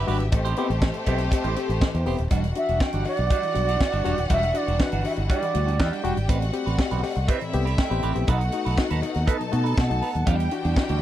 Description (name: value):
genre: disco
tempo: 121 BPM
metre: 4/4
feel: straight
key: E minor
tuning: A4 = 440 Hz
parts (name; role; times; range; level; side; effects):
- rich studio violin section; second line; 0.0-11.0 s; A3 to A5; -32 LUFS; left 3 dB; none
- clean electric guitar; accompaniment; 0.0-11.0 s; G3 to C5; -31 LUFS; right 10 dB; phaser
- warm studio string section; sustained chords; 0.0-11.0 s; E3 to G4; -34 LUFS; equal; none
- fingered electric bass; bass; 0.0-11.0 s; D#1 to B2; -25 LUFS; equal; none
- barky reed electric piano; accompaniment; 0.1-11.0 s; A2 to G4; -31 LUFS; left 7 dB; none
- tight funk drum kit; drums; 0.1-11.0 s; hi-hat, kick drum, snare drum; -23 LUFS; equal; none
- cowbell; percussion; 0.3-10.9 s; none; -37 LUFS; left 6 dB; none
- reedy bansuri; melody; 2.6-10.5 s; B4 to G5; -27 LUFS; right 3 dB; slapback echo
room: little or no reverb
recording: dry, close 1970s-style studio recording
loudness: -21 LUFS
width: side -12 dB against mid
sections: 0.0-2.3 A section; 2.3-11.0 B section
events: bansuri solo 2.3-11.0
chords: 0.3 Am7; 2.3 Em9; 6.3 Am9; 8.3 B7; 10.3 Em9